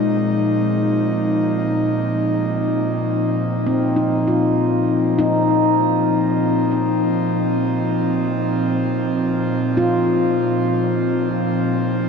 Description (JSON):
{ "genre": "ambient", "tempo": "free time", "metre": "none", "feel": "none", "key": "unclear", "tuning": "A4 = 440 Hz", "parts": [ { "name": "airy breathy pad", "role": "sustained chords", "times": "0.0-12.1 s", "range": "Bb2 to Eb4", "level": "-18 LUFS", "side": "equal", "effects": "chorus" }, { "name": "handpan", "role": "arpeggios", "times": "0.0-10.9 s", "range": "Ab3 to F4", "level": "-21 LUFS", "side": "left 2 dB", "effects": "ping-pong delay, shimmer reverb" } ], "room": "wet cathedral reverb, RT60 6.5 s", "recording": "in a vast, echoing space, cassette tape, nothing above 7.9 kHz", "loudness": "-16 LUFS", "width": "side -5 dB against mid", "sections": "0.0-12.1 A section", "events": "none", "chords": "0.0 Bbsus4" }